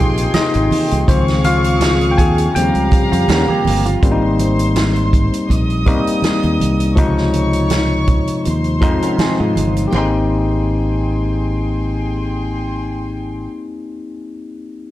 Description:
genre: lush 1970s-style soul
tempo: 81 BPM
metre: 4/4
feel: swing 54% on 16ths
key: Ab major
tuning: A4 = 445 Hz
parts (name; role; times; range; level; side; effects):
- warm studio string section; second line; 0.0-13.5 s; G4 to Eb6; -24 LUFS; right 1 dB; none
- barky tine electric piano; accompaniment; 0.0-14.9 s; C3 to Ab5; -18 LUFS; left 3 dB; overdrive
- mellow French horn section; sustained chords; 0.0-4.0 s; Db3 to F4; -27 LUFS; right 2 dB; none
- fingered electric bass; bass; 0.0-13.5 s; G1 to Ab2; -18 LUFS; equal; none
- vintage drum kit; drums; 0.2-9.9 s; hi-hat, kick drum, snare drum; -18 LUFS; right 1 dB; none
- congas; percussion; 0.3-10.3 s; none; -24 LUFS; right 4 dB; none
- group handclap; percussion; 0.4-10.3 s; none; -34 LUFS; right 4 dB; none
- electric guitar through a small old amp; riff; 3.1-4.2, 8.8-9.9 s; Ab3 to Bb4; -22 LUFS; right 5 dB; none
room: small room ambience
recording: dark, warm production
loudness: -13 LUFS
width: side -14 dB against mid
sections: 0.0-4.0 A section; 4.0-9.9 B section; 9.9-12.9 C section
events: tine electric piano solo 0.0-4.0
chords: 0.0 Abmaj7; 1.1 Dbmaj7; 2.6 Eb13; 4.0 Abmaj7; 7.0 Dbmaj7; 9.9 Abmaj7

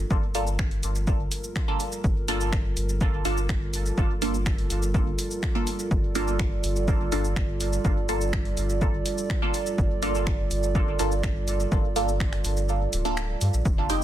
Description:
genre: dub techno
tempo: 124 BPM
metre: 4/4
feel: straight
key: G minor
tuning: A4 = 440 Hz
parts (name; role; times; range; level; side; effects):
- dark analog pad; sustained chords; 0.0-14.0 s; G3 to D5; -32 LUFS; right 4 dB; chorus, sidechain pumping
- soft dub sub bass; bass; 0.0-14.0 s; D1 to G2; -28 LUFS; equal; tube saturation, sidechain pumping
- deep house drum kit; drums; 0.1-14.0 s; finger snaps, hi-hat, shaker; -34 LUFS; equal; overdrive, soft clipping on snare
- electronic kick drum; drums; 0.1-13.8 s; none; -26 LUFS; equal; overdrive
- filtered dub chord stab; stabs; 0.3-14.0 s; Ab3 to A4; -30 LUFS; right 1 dB; phaser, sidechain pumping, dub echo
room: little or no reverb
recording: dense, heavily limited modern master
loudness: -23 LUFS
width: side -12 dB against mid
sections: 0.0-14.0 A section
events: kick drops out 12.7-13.7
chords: 0.0 Gm9

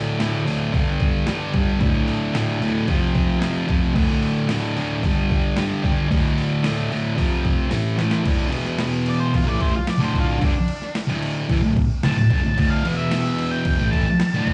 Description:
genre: garage rock duo or trio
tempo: 112 BPM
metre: 4/4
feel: straight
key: unclear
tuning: A4 = 440 Hz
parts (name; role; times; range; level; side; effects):
- thick fuzz guitar; riff; 0.0-14.5 s; D2 to A3; -23 LUFS; equal; distortion
- boom bap sampler-style drum kit; drums; 0.2-14.5 s; crash cymbal, hi-hat, kick drum, snare drum; -26 LUFS; equal; none
- octave-fuzz lead guitar; melody; 9.1-14.5 s; D4 to A5; -30 LUFS; equal; distortion, slapback echo
room: light reverb, digital ambience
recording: live gig heard through the venue's PA, club reverb, nothing above 10.3 kHz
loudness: -21 LUFS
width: mono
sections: 0.0-8.3 A section; 8.3-14.5 B section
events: drum fill 7.7-8.3; lead electric guitar solo 8.3-14.5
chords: 0.0 D5; 0.7 G5; 1.8 D5; 2.9 F5; 4.0 D5; 5.0 G5; 6.1 D5; 7.2 F5; 7.7 A5; 8.3 D5; 8.5 E5; 9.5 D5; 12.8 E5; 13.8 D5

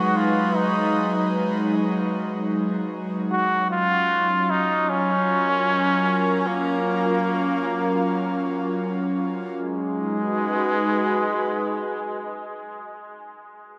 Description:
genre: ambient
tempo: free time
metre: none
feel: none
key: G# dorian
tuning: A4 = 442 Hz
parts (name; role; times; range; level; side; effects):
- trombone with straight mute; melody; 0.0-12.7 s; G#3 to F#4; -26 LUFS; equal; dub echo
- airy breathy pad; sustained chords; 0.0-13.0 s; F#3 to B4; -26 LUFS; equal; chorus
room: wet plate reverb, RT60 2.4 s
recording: dreamy mix soaked in reverb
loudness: -23 LUFS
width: mono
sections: 0.0-9.6 A section; 9.6-12.8 B section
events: none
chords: 0.0 G#m7; 3.3 F#maj7; 9.6 G#m7

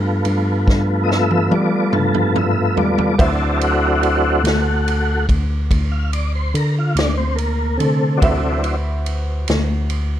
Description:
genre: slow blues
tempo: 48 BPM (dotted quarters)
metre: 12/8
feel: straight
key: unclear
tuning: A4 = 440 Hz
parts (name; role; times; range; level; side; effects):
- bright grand piano; accompaniment; 0.0-10.2 s; F4 to G5; -27 LUFS; right 2 dB; none
- tonewheel organ; sustained chords; 0.0-8.8 s; C3 to F5; -19 LUFS; equal; slow rotary speaker, chorus vibrato
- tine electric piano; bass; 0.0-10.2 s; D2 to G3; -19 LUFS; equal; none
- swinging big-band drum kit; drums; 0.2-10.1 s; kick drum, ride cymbal, snare drum, toms; -22 LUFS; equal; none
room: light reverb, studio reverb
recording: dark, warm production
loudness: -15 LUFS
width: side -11 dB against mid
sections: 0.0-10.2 A section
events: tonewheel organ solo 0.0-10.2; drum fill 0.7-3.2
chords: 0.0 G13; 3.2 D13

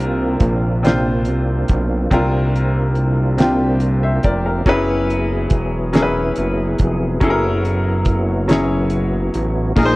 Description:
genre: slow six-eight R&B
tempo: 47 BPM (dotted quarters)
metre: 6/8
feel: straight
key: unclear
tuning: A4 = 439 Hz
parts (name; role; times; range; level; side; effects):
- clear baby grand piano; accompaniment; 0.0-10.0 s; Bb2 to E5; -20 LUFS; left 1 dB; none
- tonewheel organ; sustained chords; 0.0-10.0 s; Gb3 to Ab4; -24 LUFS; equal; chorus vibrato, slow rotary speaker
- fat analog bass; bass; 0.0-10.0 s; Fb1 to C2; -19 LUFS; equal; none
- damped 70s drum kit; drums; 0.0-10.0 s; crash cymbal, hi-hat, kick drum, snare drum; -17 LUFS; equal; none
room: little or no reverb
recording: worn, warbling old tape, cassette tape, warbly pitch drift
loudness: -15 LUFS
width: side -20 dB against mid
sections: 0.0-9.8 A section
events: kick muted 8.5-9.8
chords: 0.0 C9sus4; 4.7 Gb9sus4

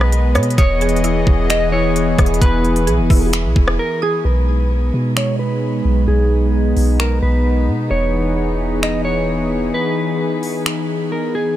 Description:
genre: hip hop, atmospheric cloud-rap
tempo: 131 BPM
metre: 4/4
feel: half-time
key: unclear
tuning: A4 = 439 Hz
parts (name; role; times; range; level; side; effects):
- mellow electric guitar; melody; 0.0-11.6 s; G#4 to D#5; -22 LUFS; equal; low-pass filter, ping-pong delay
- warm analog pad; sustained chords; 0.0-11.5 s; E3 to D#5; -20 LUFS; left 1 dB; chorus, sidechain pumping, low-pass filter
- mallet-like synth pluck; arpeggios; 0.0-4.2 s; D#4 to D#6; -28 LUFS; right 5 dB; chorus, ping-pong delay
- soft 808-style bass; bass; 0.0-9.7 s; E1 to B2; -18 LUFS; equal; none
- trap drum kit; drums; 0.0-10.8 s; finger snaps, hi-hat, kick drum, rim click; -18 LUFS; equal; none
room: little or no reverb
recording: none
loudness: -14 LUFS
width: side -13 dB against mid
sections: 0.0-4.2 A section; 4.2-11.6 B section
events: break 3.8-4.2; filter sweep 4.2-11.6; kick muted 10.7-11.6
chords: 0.0 B69; 0.6 Emaj7; 4.2 B6; 7.9 Emaj7

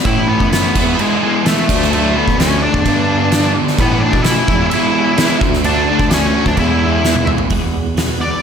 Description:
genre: quiet-loud alternative rock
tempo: 129 BPM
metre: 4/4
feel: straight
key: E mixolydian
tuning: A4 = 439 Hz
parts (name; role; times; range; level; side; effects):
- octave-fuzz lead guitar; melody; 0.0-8.4 s; G#3 to E5; -18 LUFS; equal; distortion, slapback echo
- raw garage guitar; riff; 0.0-8.4 s; E2 to F#4; -19 LUFS; left 8 dB; overdrive, tremolo, slapback echo
- thick fuzz guitar; riff; 0.0-7.5 s; G2 to F#4; -20 LUFS; right 11 dB; distortion, slapback echo
- mellow bass clarinet; bass; 0.1-8.3 s; D2 to B2; -20 LUFS; equal; none
- oversized low-tuned drum kit; drums; 0.1-8.1 s; crash cymbal, hi-hat, kick drum, snare drum, toms; -17 LUFS; right 1 dB; none
- twelve-string electric guitar; arpeggios; 7.5-8.4 s; E3 to F#4; -23 LUFS; right 8 dB; tremolo, slapback echo
room: moderate recital hall reverb, RT60 1.4 s, small room reverb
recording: big arena sound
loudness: -12 LUFS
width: side -7 dB against mid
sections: 0.0-7.5 A section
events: drum fill 7.0-7.5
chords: 0.1 Aadd9; 0.8 E; 1.7 D; 2.9 G; 3.8 Aadd9; 4.5 E; 5.4 D; 6.6 E; 7.5 Eadd9

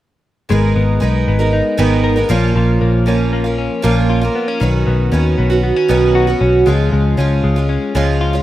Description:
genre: indie pop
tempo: 117 BPM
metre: 4/4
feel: straight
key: G# dorian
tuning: A4 = 439 Hz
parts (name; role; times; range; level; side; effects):
- picked twelve-string acoustic guitar; accompaniment; 0.5-8.4 s; G#2 to A#4; -17 LUFS; right 5 dB; none
- direct-recorded clean electric guitar; arpeggios; 0.5-8.4 s; D#3 to A#4; -19 LUFS; left 5 dB; wide subtle chorus
- vintage muted picked electric bass; bass; 0.5-8.4 s; G#1 to D#2; -15 LUFS; equal; none
room: little or no reverb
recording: rough home demo mix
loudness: -12 LUFS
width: side -14 dB against mid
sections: 0.5-8.4 A section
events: none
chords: 0.5 G#madd9; 2.3 A#m; 4.6 Badd9; 6.7 C#

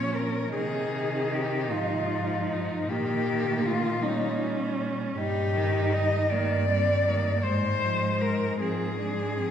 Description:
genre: classical, lyrical piece for cello ensemble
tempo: 52 BPM (dotted quarters)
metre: 6/8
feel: rubato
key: Eb major from 5.2 s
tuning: A4 = 441 Hz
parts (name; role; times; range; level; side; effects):
- rich cello; melody; 0.0-9.5 s; Eb4 to Eb5; -28 LUFS; left 3 dB; none
- rich cello; second line; 0.0-9.5 s; Ab3 to Eb4; -32 LUFS; right 4 dB; none
- warm cello; accompaniment; 0.0-9.5 s; Eb3 to Ab3; -34 LUFS; left 2 dB; none
- warm cello; bass; 0.0-9.5 s; G2 to C3; -30 LUFS; right 2 dB; none
room: wet concert hall reverb, RT60 2.5 s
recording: recorded in a church or concert hall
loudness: -24 LUFS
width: side -9 dB against mid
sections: 0.0-9.5 A section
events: none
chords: 0.0 Bbm; 0.6 Ab/C; 2.9 Eb7/Bb; 5.2 Eb/G; 7.4 Fm/Ab

